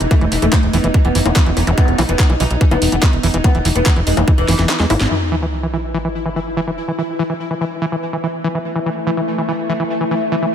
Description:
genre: psychedelic trance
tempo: 144 BPM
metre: 4/4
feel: straight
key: unclear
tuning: A4 = 442 Hz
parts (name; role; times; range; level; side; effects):
- oud; melody; 0.0-5.0 s; E3 to D#4; -22 LUFS; right 2 dB; phaser, sidechain pumping, tape echo
- pulsing gated texture; sustained chords; 0.0-10.5 s; E3 to E4; -23 LUFS; left 1 dB; chorus, built-in reverb, sidechain pumping
- plucky analog bass; bass; 0.0-5.1 s; E1 to E2; -18 LUFS; equal; none
- garage drum kit; drums; 0.0-5.1 s; bongos, handclaps, hi-hat, snare drum; -21 LUFS; left 2 dB; overdrive, low-pass filter on hats, small room ambience, low-pass filter on perc, low-pass filter on snare
- deep dark ambient pad; texture; 0.0-10.5 s; E4 to E5; -27 LUFS; left 2 dB; chorus, built-in reverb, sidechain pumping
- overdriven acid bass; riff; 0.1-10.5 s; E3 to E4; -22 LUFS; equal; auto-pan, sidechain pumping, digital delay
- electronic kick drum; drums; 0.1-4.4 s; none; -13 LUFS; equal; overdrive, small room ambience
- zap and sub drop; sound effects; 1.7-1.8, 4.9-6.8 s; none; -25 LUFS; equal; none
room: light reverb, digital ambience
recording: none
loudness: -14 LUFS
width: side -9 dB against mid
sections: 0.0-5.1 A section; 5.1-10.5 B section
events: drum fill 4.5-5.1; kick drops out 4.7-5.1; band accent 5.0; impact 5.1-6.8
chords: 0.0 E5

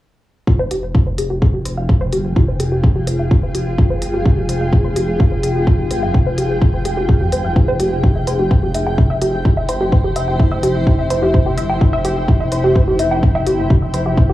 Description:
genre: melodic techno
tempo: 127 BPM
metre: 4/4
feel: straight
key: F harmonic minor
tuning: A4 = 435 Hz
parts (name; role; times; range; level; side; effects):
- tight sequenced synth; arpeggios; 0.5-14.3 s; E4 to G5; -21 LUFS; equal; chorus, phaser, vintage 12-bit sampler grit, sidechain pumping, analog delay
- electronic kick drum; drums; 0.5-14.3 s; none; -14 LUFS; equal; cassette tape
- granular cloud pad; texture; 1.8-14.3 s; E4 to G5; -22 LUFS; left 1 dB; built-in reverb, sidechain pumping
- dark detuned saw bass; bass; 0.6-14.3 s; F1 to F2; -21 LUFS; equal; sidechain pumping
- electronic hi-hat; drums; 0.7-14.0 s; none; -30 LUFS; equal; cassette tape
room: light reverb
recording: home recording on cassette, small room ambience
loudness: -13 LUFS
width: side -15 dB against mid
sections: 0.5-14.3 A section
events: filter sweep on synth arpeggio sound 0.5-14.3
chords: 0.5 Fmadd9; 8.0 C/F

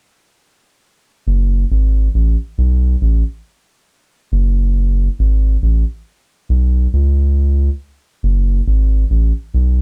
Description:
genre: reggae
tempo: 69 BPM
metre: 4/4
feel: swing 59% on 16ths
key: F# minor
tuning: A4 = 442 Hz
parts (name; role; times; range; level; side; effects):
- soft dub sub bass; solo; 1.3-9.8 s; F#1 to C#2; -15 LUFS; equal; none
room: moderate booth ambience, RT60 0.2 s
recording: dry, close 1970s-style studio recording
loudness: -16 LUFS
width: mono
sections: 0.8-9.8 A section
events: none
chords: none

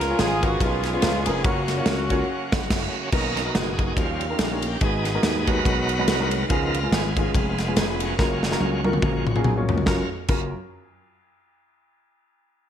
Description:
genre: uptempo gospel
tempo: 142 BPM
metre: 4/4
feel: swing 57% on 8ths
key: F# major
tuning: A4 = 440 Hz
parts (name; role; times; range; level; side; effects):
- warm horn section; melody; 0.0-2.7 s; G#3 to A#4; -26 LUFS; equal; digital delay
- dark baby grand piano; accompaniment; 0.0-10.5 s; F#2 to C#5; -28 LUFS; left 1 dB; wide subtle chorus
- bright tonewheel organ; sustained chords; 0.0-10.1 s; C#3 to B4; -28 LUFS; right 3 dB; fast rotary speaker, overdrive
- slap bass with an envelope filter; bass; 0.0-10.5 s; E#1 to D#2; -28 LUFS; equal; none
- modern studio drum kit; drums; 0.0-10.4 s; crash cymbal, kick drum, ride cymbal, snare drum, toms; -24 LUFS; equal; gated reverb
room: moderate plate reverb, RT60 1.1 s, small room ambience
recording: bright 1980s-style digital production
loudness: -20 LUFS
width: side -9 dB against mid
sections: 0.0-3.1 A section; 3.1-9.9 B section; 9.9-11.6 C section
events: band accent 2.3-3.1; tonewheel organ solo 3.1-9.9; drum fill 8.2-9.9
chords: 0.0 C#7; 1.4 F#maj7; 3.1 Bmaj7; 4.0 D#7; 4.8 G#m7; 6.5 C#7; 8.2 F#maj7

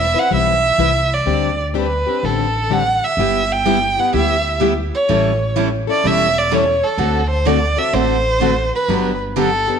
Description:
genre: acoustic string swing (jazz manouche)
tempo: 126 BPM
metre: 4/4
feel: swing 65% on 8ths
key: G major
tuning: A4 = 441 Hz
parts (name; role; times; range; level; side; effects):
- warm violin; melody; 0.0-9.8 s; A4 to G5; -17 LUFS; right 2 dB; none
- upright bass; bass; 0.0-9.6 s; E1 to D2; -22 LUFS; equal; none
- picked plugged-in steel-string acoustic guitar; accompaniment; 0.1-9.8 s; D3 to B4; -21 LUFS; left 10 dB; none
- picked steel-string acoustic guitar; accompaniment; 3.2-9.5 s; D3 to A4; -22 LUFS; right 10 dB; none
room: moderate echo chamber reverb, RT60 1.7 s, small room ambience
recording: 1960s-style stereo with parts hard left and right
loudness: -14 LUFS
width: side -7 dB against mid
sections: 0.0-9.8 A section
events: none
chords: 0.0 Cmaj7/E; 1.3 D7sus4; 3.2 G6; 5.1 A7; 7.0 D7; 8.9 Gmaj7

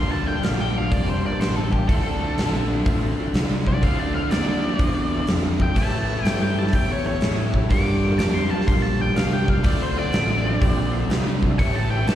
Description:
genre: blues rock power trio and southern rock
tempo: 124 BPM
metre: 4/4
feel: swing 66% on 8ths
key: D minor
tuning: A4 = 440 Hz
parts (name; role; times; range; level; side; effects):
- octave-fuzz lead guitar; melody; 0.0-12.2 s; G4 to D6; -28 LUFS; left 2 dB; distortion, slapback echo
- overdriven tonewheel organ; sustained chords; 0.0-12.2 s; Bb3 to C5; -33 LUFS; right 3 dB; slow rotary speaker, chorus vibrato
- biting overdriven guitar; riff; 0.0-12.2 s; G2 to D4; -26 LUFS; equal; slapback echo
- fuzz fingered electric bass; bass; 0.0-12.2 s; F1 to A2; -24 LUFS; equal; overdrive
- huge arena drum kit; drums; 0.4-12.2 s; hi-hat, kick drum, snare drum; -23 LUFS; equal; none
room: small room ambience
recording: live gig heard through the venue's PA, recital hall reverb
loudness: -19 LUFS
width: side -11 dB against mid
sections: 0.0-12.2 A section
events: lead electric guitar solo 0.0-12.2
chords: 0.0 Gm9; 1.9 Dm9; 5.8 A7; 7.7 Gm9; 9.6 Dm9; 11.6 A7

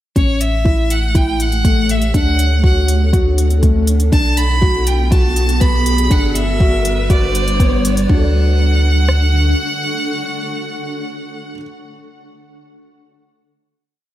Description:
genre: piano and strings electronica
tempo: 121 BPM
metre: 4/4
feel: straight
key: D major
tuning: A4 = 441 Hz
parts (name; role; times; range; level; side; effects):
- clear violin; melody; 0.2-11.5 s; C#5 to B5; -21 LUFS; right 1 dB; none
- granular cloud pad; sustained chords; 1.0-11.7 s; G3 to C#6; -24 LUFS; right 1 dB; built-in reverb, sidechain pumping
- felt-muted upright piano; riff; 0.2-11.6 s; A3 to D5; -21 LUFS; left 2 dB; digital delay
- warm sub bass; bass; 0.2-9.5 s; G1 to D2; -16 LUFS; equal; tube saturation, sidechain pumping
- deep house drum kit; drums; 0.2-9.2 s; kick drum, rim click; -14 LUFS; equal; small room ambience
- electronic hi-hat; drums; 0.2-8.1 s; none; -25 LUFS; equal; high-pass filter on hats, small room ambience
- riser; sound effects; 2.3-8.1 s; none; -29 LUFS; equal; none
room: light reverb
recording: none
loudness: -12 LUFS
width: side -13 dB against mid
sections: 0.2-8.1 build; 8.1-12.1 final chord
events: build-up 0.2-8.1; filter sweep on ambient pad 0.2-8.1; riser 2.3-8.1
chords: 0.2 A7; 2.1 Dmaj7; 4.1 Bm7; 6.1 Gmaj7; 8.1 Dmaj7

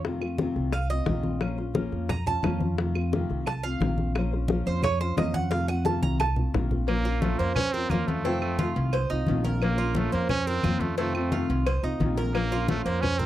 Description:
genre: latin, Cuban son and guajira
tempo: 176 BPM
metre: 4/4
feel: straight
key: Bb harmonic minor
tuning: A4 = 439 Hz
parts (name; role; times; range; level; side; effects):
- nylon-string guitar; accompaniment; 0.0-13.3 s; C3 to C5; -31 LUFS; left 3 dB; none
- upright bass; bass; 0.0-13.3 s; Bb1 to F2; -28 LUFS; equal; none
- bongos and cowbell; percussion; 0.0-13.2 s; none; -33 LUFS; left 7 dB; none
- congas; percussion; 0.0-13.3 s; none; -31 LUFS; left 1 dB; none
- claves; percussion; 0.2-13.2 s; none; -41 LUFS; right 7 dB; none
- Cuban tres; arpeggios; 0.7-13.3 s; C4 to Bb5; -31 LUFS; right 5 dB; none
- bright trumpet; melody; 6.9-13.3 s; A3 to Db4; -30 LUFS; right 3 dB; none
room: little or no reverb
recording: dry, close 1970s-style studio recording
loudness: -24 LUFS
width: side -13 dB against mid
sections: 0.0-6.9 A section; 6.9-13.3 B section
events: Cuban tres solo 0.0-6.9; drum fill 6.0-6.9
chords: 0.1 F7; 1.4 Bbmadd9; 2.8 F7; 4.2 Bbmadd9; 5.5 F7; 6.9 Bbmadd9; 8.2 F7; 9.6 Bbmadd9; 11.0 F7; 12.3 Bbmadd9

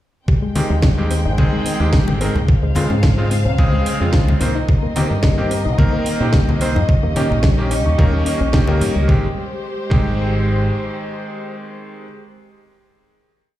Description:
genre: nu-disco, nu disco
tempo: 109 BPM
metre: 4/4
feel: straight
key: Ab major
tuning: A4 = 440 Hz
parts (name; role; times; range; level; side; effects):
- dark studio string section; sustained chords; 0.3-12.1 s; Ab3 to G5; -26 LUFS; left 1 dB; sidechain pumping
- soft round pluck; arpeggios; 0.3-10.1 s; F3 to G4; -26 LUFS; left 3 dB; chorus, sidechain pumping, digital delay
- fingered electric bass with an envelope filter; bass; 0.3-10.7 s; Ab1 to Bb2; -19 LUFS; equal; sidechain pumping
- electronic kick drum; drums; 0.3-10.1 s; none; -17 LUFS; equal; studio reverb
- bright electric grand piano; accompaniment; 0.6-12.1 s; Db3 to C5; -22 LUFS; equal; digital delay
- house drum kit; drums; 0.6-8.9 s; hi-hat, snare drum; -27 LUFS; right 1 dB; studio reverb
- congas; percussion; 0.6-8.9 s; none; -24 LUFS; left 2 dB; none
room: light reverb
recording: played on a big sound system in a bare room, large studio reverb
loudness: -14 LUFS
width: side -14 dB against mid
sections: 0.3-9.1 groove; 9.1-11.3 final chord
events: none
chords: 0.3 Abmaj7; 2.5 Dbmaj7; 4.4 Cm7; 6.9 Eb7; 9.1 Abmaj7

